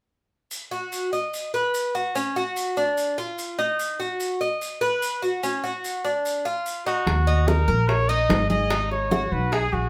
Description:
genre	latin, Cuban son and guajira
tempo	146 BPM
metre	4/4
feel	straight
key	Eb minor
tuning	A4 = 436 Hz
part	maracas	percussion	0.5-7.1 s	none	-38 LUFS	equal	none
part	Cuban tres	arpeggios	0.7-9.9 s	Db4 to Eb5	-27 LUFS	equal	none
part	clear trumpet	melody	6.9-9.9 s	Gb4 to Eb5	-27 LUFS	equal	none
part	upright bass	bass	7.1-9.9 s	Ab1 to Eb2	-25 LUFS	equal	none
part	bongos	percussion	7.1-9.9 s	none	-30 LUFS	equal	none
part	congas	percussion	7.1-9.9 s	none	-31 LUFS	equal	none
room	wet studio reverb, RT60 0.6 s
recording	band playing live in one room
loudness	-24 LUFS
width	mono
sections	0.5-7.1 A section; 7.1-9.9 B section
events	none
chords	0.5 Ebm; 1.3 B; 2.2 Dbsus4; 3.0 Dm; 3.8 Ebm; 4.6 B; 5.4 Dbsus4; 6.2 Dm; 7.1 Ebm; 8.7 Abm7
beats	| 0.51 0.92 1.33 1.74 | 2.15 2.56 2.97 3.38 | 3.79 4.20 4.61 5.02 | 5.43 5.84 6.25 6.66 | 7.07 7.48 7.88 8.29 | 8.70 9.11 9.52

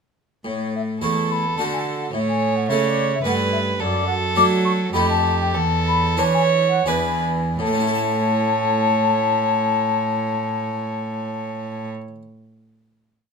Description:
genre	classical, baroque-style sonata movement with continuo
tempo	80-108 BPM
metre	3/4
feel	straight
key	A major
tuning	A4 = 440 Hz
part	harpsichord	accompaniment	0.4-12.2 s	E2 to E5	-25 LUFS	right 1 dB	none
part	mellow baroque flute	melody	0.5-11.9 s	C#5 to D6	-22 LUFS	left 7 dB	none
part	rich cello	bass	0.5-11.9 s	E2 to F#3	-25 LUFS	right 1 dB	none
part	warm violin	second line	1.0-11.9 s	G4 to C#5	-24 LUFS	right 6 dB	none
room	moderate studio reverb, RT60 0.8 s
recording	minimal, uncompressed stereo recording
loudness	-18 LUFS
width	side -5 dB against mid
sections	0.5-7.6 A section; 7.6-12.1 final chord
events	slowing down 3.0-7.6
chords	0.5 A5; 1.6 D; 2.1 A; 3.2 A7/G; 3.8 D/F#; 4.9 F7; 5.5 E7sus4; 7.6 A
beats	| 0.45 1.02 1.58 | 2.13 2.69 3.25 | 3.80 4.36 4.94 | 5.54 6.18 6.87 | 7.60 8.34 9.09 | 9.83 10.57 11.31

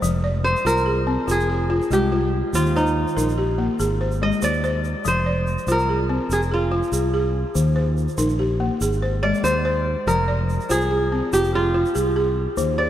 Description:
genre	west african traditional, West African string and xylophone music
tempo	96 BPM (dotted quarters)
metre	12/8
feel	straight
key	F dorian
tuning	A4 = 436 Hz
part	balafon	arpeggios	0.0-12.9 s	Eb3 to D5	-23 LUFS	left 1 dB	none
part	fingered electric bass	bass	0.0-12.9 s	F1 to Eb2	-24 LUFS	equal	none
part	tube shaker	percussion	0.0-12.7 s	none	-35 LUFS	right 6 dB	none
part	kora	melody	0.4-12.9 s	Eb4 to Eb5	-23 LUFS	right 1 dB	none
room	wet cathedral reverb, RT60 5.5 s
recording	in a vast, echoing space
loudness	-18 LUFS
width	side -11 dB against mid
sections	0.0-12.9 A section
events	kora solo 0.0-12.9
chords	0.0 Fm; 2.5 Eb; 3.8 Ab; 5.0 Fm; 7.6 Eb; 8.8 Ab; 10.1 Fm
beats	| 0.03 0.66 1.29 1.91 | 2.54 3.17 3.79 4.42 | 5.05 5.68 6.30 6.93 | 7.56 8.19 8.81 9.44 | 10.07 10.69 11.32 11.95 | 12.58

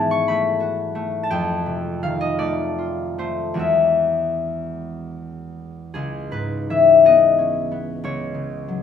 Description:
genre	classical, solo harp piece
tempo	48-63 BPM (dotted quarters)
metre	6/8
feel	rubato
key	unclear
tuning	A4 = 440 Hz
part	concert harp	solo	0.0-8.8 s	C#2 to C#6	-18 LUFS	left 4 dB	none
room	moderate stone room reverb, RT60 1.3 s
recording	close, detailed microphones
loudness	-17 LUFS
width	side -8 dB against mid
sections	0.0-5.9 A section; 5.9-8.8 B section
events	none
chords	0.0 F#m11/G#; 1.3 F9; 3.6 Eadd9; 5.9 C#m7; 8.0 Dmaj7/C# (rootless)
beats	0.29 | 1.31 2.38 | 3.57 4.74 | 5.93 7.03 | 8.02

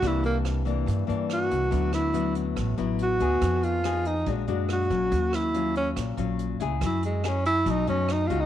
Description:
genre	bossa nova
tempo	141 BPM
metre	4/4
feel	straight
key	unclear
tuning	A4 = 437 Hz
part	mellow tenor saxophone	melody	0.0-8.5 s	Ab3 to F#4	-26 LUFS	right 2 dB	none
part	nylon-string guitar	accompaniment	0.0-8.5 s	G2 to Ab4	-29 LUFS	left 8 dB	none
part	upright bass	bass	0.0-8.5 s	A1 to G2	-28 LUFS	right 1 dB	none
part	vintage brush drum kit	drums	0.0-8.4 s	hi-hat, kick drum, rim click	-38 LUFS	right 5 dB	none
room	light reverb, studio reverb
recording	1960s-style stereo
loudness	-23 LUFS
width	side -11 dB against mid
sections	0.0-8.5 A section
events	tenor saxophone solo 0.0-8.5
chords	0.0 C9; 1.7 D69; 3.4 Fm7b5; 4.3 Bb7alt; 5.1 Ebm9; 6.8 Gbm9; 7.7 Cb7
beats	| 0.02 0.45 0.87 1.29 | 1.72 2.15 2.57 2.99 | 3.42 3.84 4.27 4.69 | 5.12 5.54 5.97 6.39 | 6.82 7.24 7.67 8.09

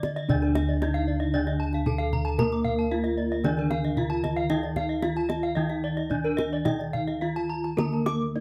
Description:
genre	Balinese gamelan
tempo	113 BPM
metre	4/4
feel	uneven beats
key	D pelog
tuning	A4 = 441 Hz
part	gamelan-type bronze metallophone	melody	0.0-8.4 s	D4 to D5	-33 LUFS	equal	none
part	gamelan-type bronze metallophone	arpeggios	0.0-8.1 s	Bb4-20c to D6	-38 LUFS	equal	none
part	gamelan-type bronze metallophone	arpeggios	0.0-8.2 s	Bb4-20c to D6	-36 LUFS	equal	none
part	gamelan-type bossed gongs	bass	0.0-8.4 s	D2 to Bb4-20c	-31 LUFS	equal	none
part	kendang	percussion	0.0-8.2 s	none	-33 LUFS	equal	none
part	gamelan-type bronze metallophone	accompaniment	0.3-8.4 s	D3 to Bb3-20c	-34 LUFS	equal	none
room	light reverb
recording	none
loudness	-27 LUFS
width	mono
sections	0.0-8.4 A section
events	none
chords	none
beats	| 0.29 0.82 1.34 1.87 | 2.40 2.92 3.45 3.97 | 4.50 5.03 5.56 6.10 | 6.66 7.21 7.78 8.36

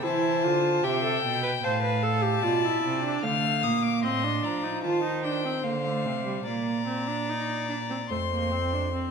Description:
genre	classical, baroque-style fugue for string quartet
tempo	75 BPM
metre	4/4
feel	straight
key	Bb major from 3.2 s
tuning	A4 = 440 Hz
part	warm violin	melody	0.0-9.1 s	F5 to F6	-30 LUFS	left 9 dB	none
part	rich violin	second line	0.0-9.1 s	C5 to G5	-32 LUFS	left 2 dB	none
part	warm viola	accompaniment	0.0-9.1 s	G3 to C5	-28 LUFS	right 3 dB	none
part	rich cello	bass	0.0-9.1 s	F2 to F3	-31 LUFS	right 4 dB	none
room	wet recital hall reverb, RT60 1.6 s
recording	minimal, uncompressed stereo recording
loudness	-24 LUFS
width	side -6 dB against mid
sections	0.0-9.1 A section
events	none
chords	0.0 C; 1.6 F/A; 3.2 Dm; 4.8 Eb; 6.5 Bbadd9; 8.1 F5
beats	| 0.04 0.84 1.64 2.44 | 3.23 4.03 4.84 5.64 | 6.46 7.28 8.10 8.93

